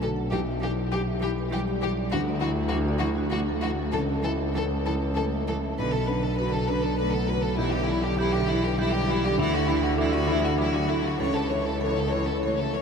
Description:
neoclassical piano and strings; 99 BPM; 3/4; rubato; A4 = 441 Hz
clear chamber violin section; melody; 0.0-12.8 s; E4 to C#5; -29 LUFS; left 3 dB; ping-pong delay
rich cello; second line; 0.0-12.8 s; B2 to E3; -33 LUFS; right 4 dB
felt-muted upright piano; accompaniment; 0.0-12.8 s; B1 to A4; -29 LUFS; equal; wide subtle chorus
rich double bass; bass; 0.0-12.8 s; B1 to D2; -28 LUFS; equal
marimba with hard mallets; arpeggios; 0.2-12.7 s; D4 to A5; -35 LUFS; right 2 dB; ping-pong delay
wet huge ambient reverb, RT60 7.9 s; dreamy mix soaked in reverb; -23 LUFS; side -6 dB against mid
0.0-12.8 A section
0.3 G6/B; 2.1 Dadd9; 3.9 A/C#; 5.8 Bm7; 7.6 G6/B; 9.4 Dadd9; 11.2 A/C#

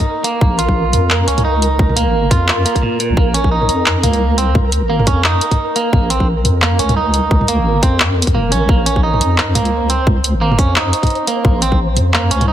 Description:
half-time drum and bass; 174 BPM; 4/4; swing 58% on 16ths, half-time; Bb minor; A4 = 441 Hz
electric guitar at the edge of break-up; arpeggios; 0.0-12.5 s; Bb2 to F4; -18 LUFS; right 4 dB; tape echo
drum and bass drum kit; drums; 0.0-12.5 s; handclaps, hi-hat, toms; -17 LUFS; equal
electronic kick drum; drums; 0.0-11.8 s; -14 LUFS; equal
flickering grainy texture; texture; 0.0-12.5 s; Bb4 to C5; -23 LUFS; left 1 dB; built-in reverb
deep soft wobble bass; bass; 0.4-12.5 s; F1 to F2; -16 LUFS; equal; chorus, tube saturation
light reverb; -12 LUFS; side -11 dB against mid
0.0-12.5 A section
0.0 Bbmadd9

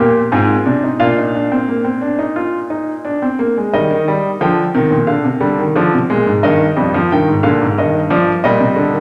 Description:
classical, baroque-style 4-part fugue for grand piano; 89 BPM; 4/4; straight; Eb major; A4 = 438 Hz
warm baby grand piano; solo; 0.0-9.0 s; F2 to C6; -15 LUFS; equal
wet recital hall reverb, RT60 1.7 s; -15 LUFS; mono
0.0-3.7 A section; 3.7-9.0 B section
0.0 Fm; 1.0 Bb; 3.7 Eb; 5.1 Ddim; 6.4 Eb; 7.8 Eb/G

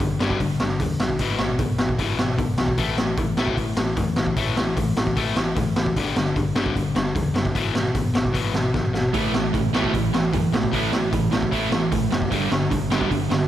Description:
punk rock; 151 BPM; 4/4; straight; A4 = 439 Hz
distorted electric guitar; riff; 0.0-13.5 s; E2 to A3; -24 LUFS; left 5 dB; distortion
overdriven picked electric bass; bass; 0.0-13.4 s; F#1 to F#2; -29 LUFS; right 1 dB
raw garage drum kit; drums; 0.0-13.4 s; hi-hat, kick drum, snare drum; -23 LUFS; right 1 dB
sludgy distorted guitar; riff; 9.1-13.5 s; G2 to A3; -25 LUFS; right 11 dB; overdrive, slapback echo
moderate recital hall reverb, RT60 1.9 s, small room ambience; -20 LUFS; side -12 dB against mid
0.0-13.5 A section
drum fill 8.7-9.1
0.0 G5; 1.2 E/G#; 2.8 A5; 6.0 G5; 7.6 E/G#; 9.1 A5; 12.3 G5

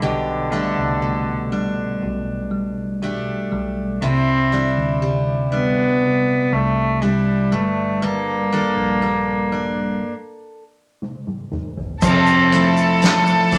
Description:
pop ballad; 60 BPM; 4/4; straight; A4 = 444 Hz
warm cello; melody; 0.0-13.6 s; D3 to D4; -22 LUFS; equal
bell-like tine electric piano; accompaniment; 0.0-13.6 s; B2 to G3; -25 LUFS; equal
picked steel-string acoustic guitar; arpeggios; 0.0-13.6 s; G2 to A4; -27 LUFS; equal
vintage muted fingered electric bass; bass; 0.0-13.6 s; F1 to D2; -31 LUFS; equal
soft-mallet drum kit; drums; 11.0-13.6 s; crash cymbal, hi-hat, kick drum, snare drum, toms; -24 LUFS; equal
warm studio violin section; second line; 12.0-13.6 s; A4 to A5; -22 LUFS; equal
egg shaker; percussion; 12.0-13.6 s; -39 LUFS; equal
wet studio reverb, RT60 0.5 s; -19 LUFS; mono
0.0-12.0 A section; 12.0-13.6 B section
stop 10.0-12.0; drum fill 11.0-12.0
0.0 Gadd9/B; 4.0 Cadd9; 7.5 Gmadd9; 12.0 Fmaj7

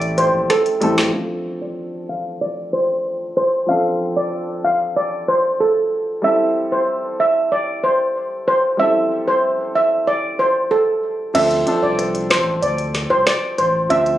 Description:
dancehall; 94 BPM; 4/4; straight; D minor; A4 = 440 Hz
warm baby grand piano; accompaniment; 0.0-14.2 s; F3 to C5; -24 LUFS; equal; low-pass filter
saturated sub bass; bass; 0.0-1.1, 11.3-14.2 s; A1 to D2; -27 LUFS; equal
island pop drum kit; drums; 0.0-1.1, 11.3-14.2 s; crash cymbal, handclaps, hi-hat, rim click, snare drum; -22 LUFS; equal
steel pan; melody; 0.2-14.2 s; A4 to F5; -17 LUFS; right 1 dB; low-pass filter
light reverb; recorded on a phone in the room, studio reverb, compression; -16 LUFS; side -13 dB against mid
0.0-1.1 A section; 1.1-11.3 B section; 11.3-14.2 C section
break 0.0-1.1; filter sweep 1.1-11.3; kick muted 11.3-14.2
0.0 Am7; 1.1 Dm7; 6.2 Am7; 11.3 Dm7

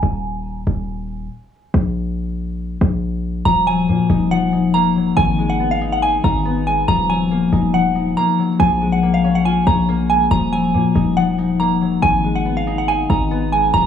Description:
hip hop, trap; 140 BPM; 4/4; half-time; Eb minor; A4 = 442 Hz
hard-hitting 808-style bass; bass; 0.0-13.9 s; Eb1 to Bb2; -21 LUFS; equal
soft synth bell; melody; 3.5-13.9 s; F5 to Bb5; -19 LUFS; right 2 dB; chorus, phaser, low-pass filter
concert harp; accompaniment; 3.5-13.9 s; Eb3 to Eb5; -18 LUFS; left 4 dB; low-pass filter
light reverb; small room ambience; -15 LUFS; side -8 dB against mid
0.0-13.9 A section
filter sweep 0.0-3.5; break 0.0-3.5
0.0 N.C.; 3.5 Ebmadd9; 5.2 Abm; 6.9 Ebmadd9; 8.6 Bbm7; 10.3 Ebmadd9; 12.0 Abm

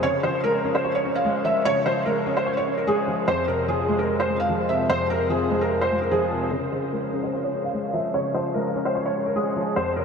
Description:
hip hop; 148 BPM; 4/4; half-time; A4 = 440 Hz
felt-muted upright piano; melody; 0.0-10.0 s; Ab4 to F5; -23 LUFS; right 1 dB; ensemble chorus, low-pass filter, analog delay
dark baby grand piano; accompaniment; 0.0-10.0 s; F2 to Db5; -26 LUFS; left 1 dB; ensemble chorus, low-pass filter
wet huge ambient reverb, RT60 8.9 s; dreamy mix soaked in reverb; -21 LUFS; side -6 dB against mid
0.0-6.5 A section; 6.5-10.0 B section
0.0 Db; 3.3 Fm; 6.5 Db

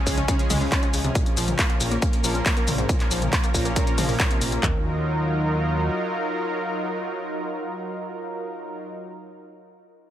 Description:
uplifting trance; 138 BPM; 4/4; straight; Eb minor; A4 = 438 Hz
lush unison pad; sustained chords; 0.1-8.9 s; F3 to Bb4; -28 LUFS; right 1 dB; chorus, sidechain pumping
wide unison pluck; arpeggios; 0.1-4.8 s; Ab2 to Db4; -29 LUFS; left 2 dB; sidechain pumping, digital delay
fat analog bass; bass; 0.1-5.9 s; Bb1 to Eb2; -26 LUFS; equal; sidechain pumping
big-room dance drum kit; drums; 0.1-4.7 s; handclaps, kick drum, toms; -23 LUFS; equal; overdrive
punchy analog drum machine; drums; 0.1-4.6 s; handclaps, hi-hat, shaker, toms; -26 LUFS; left 1 dB
light reverb, digital ambience; -21 LUFS; side -11 dB against mid
0.0-4.6 A section; 4.6-8.1 B section
drop 0.0-4.6
0.0 Db; 1.2 Bbm; 4.6 Ebmadd9

